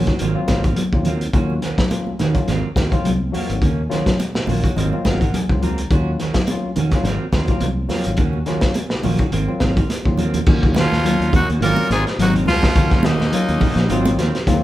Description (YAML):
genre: afrobeat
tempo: 105 BPM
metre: 4/4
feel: swing 56% on 16ths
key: Eb dorian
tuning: A4 = 438 Hz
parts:
  - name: barky tine electric piano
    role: accompaniment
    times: 0.0-14.6 s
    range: Gb3 to Bb5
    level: -26 LUFS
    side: left 3 dB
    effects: none
  - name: mellow electric guitar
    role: arpeggios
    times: 0.0-14.6 s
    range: Db3 to Ab3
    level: -24 LUFS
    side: equal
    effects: none
  - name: electric guitar at the edge of break-up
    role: stabs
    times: 0.0-14.4 s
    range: Gb3 to Gb4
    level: -28 LUFS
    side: right 4 dB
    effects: none
  - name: fingered electric bass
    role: bass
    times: 0.0-14.6 s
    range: Ab1 to Eb3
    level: -22 LUFS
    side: equal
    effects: none
  - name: crunchy breakbeat drum kit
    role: drums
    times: 0.1-14.6 s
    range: crash cymbal, hi-hat, kick drum, snare drum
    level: -20 LUFS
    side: equal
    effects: none
  - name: congas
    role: percussion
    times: 0.5-14.2 s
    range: none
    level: -26 LUFS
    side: right 3 dB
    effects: none
  - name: growling tenor saxophone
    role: melody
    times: 10.8-14.2 s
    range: Eb4 to Bb4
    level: -22 LUFS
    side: right 1 dB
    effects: none
  - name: raspy baritone saxophone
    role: second line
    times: 10.8-14.2 s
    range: Eb2 to Bb2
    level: -29 LUFS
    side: left 3 dB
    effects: none
  - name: trumpet with metal mute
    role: second line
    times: 10.8-14.2 s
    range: Bb3 to Gb4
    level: -32 LUFS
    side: right 1 dB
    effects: none
room: moderate large studio reverb, RT60 1.1 s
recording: band playing live in one room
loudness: -16 LUFS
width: side -14 dB against mid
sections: 0.0-10.5 A section; 10.5-14.6 B section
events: tine electric piano fill 4.2-5.9; drum fill 9.9-10.5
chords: 0.2 Ab13; 1.3 Ebm7; 2.5 Ab13; 3.6 Ebm7; 4.8 Ab13; 5.9 Ebm7; 7.0 Ab13; 8.2 Ebm7; 9.3 Ab13; 10.5 Ebm7; 11.6 Ab13; 12.8 Ebm7; 13.9 Ab13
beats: 0.20 0.77 | 1.34 1.91 2.48 3.05 | 3.62 4.20 4.77 5.34 | 5.91 6.48 7.05 7.62 | 8.19 8.76 9.33 9.90 | 10.48 11.05 11.62 12.19 | 12.76 13.33 13.90 14.47